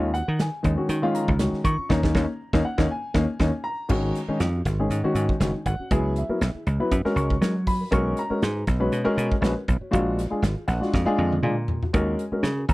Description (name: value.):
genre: electric jazz fusion.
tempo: 120 BPM.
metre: 4/4.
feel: swing 54% on 16ths.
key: Eb minor, G# dorian from 3.9 s.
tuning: A4 = 440 Hz.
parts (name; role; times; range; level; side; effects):
dark grand piano; accompaniment; 0.0-12.7 s; Eb3 to Db6; -25 LUFS; left 1 dB; none.
dry thumbed slap bass; bass; 0.0-12.7 s; F#1 to F#3; -24 LUFS; equal; none.
modern studio drum kit; drums; 0.1-12.7 s; crash cymbal, hi-hat, kick drum, snare drum, toms; -27 LUFS; right 1 dB; none.
room: little or no reverb.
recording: none.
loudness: -21 LUFS.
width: side -19 dB against mid.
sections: 0.0-3.9 A section; 3.9-12.7 A section.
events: band accent 1.9-3.9; drum fill 2.9-3.9, 10.9-11.9.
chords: 0.0 Ebm9; 3.9 G#sus2; 5.9 C#m7; 6.9 F#; 7.9 Bsus2; 9.9 A#7b13; 11.9 D#m7.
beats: 0.39 0.89 1.40 | 1.90 2.40 2.90 3.40 | 3.90 4.41 4.91 5.41 | 5.91 6.41 6.92 7.42 | 7.92 8.42 8.93 9.43 | 9.93 10.43 10.93 11.44 | 11.94 12.44.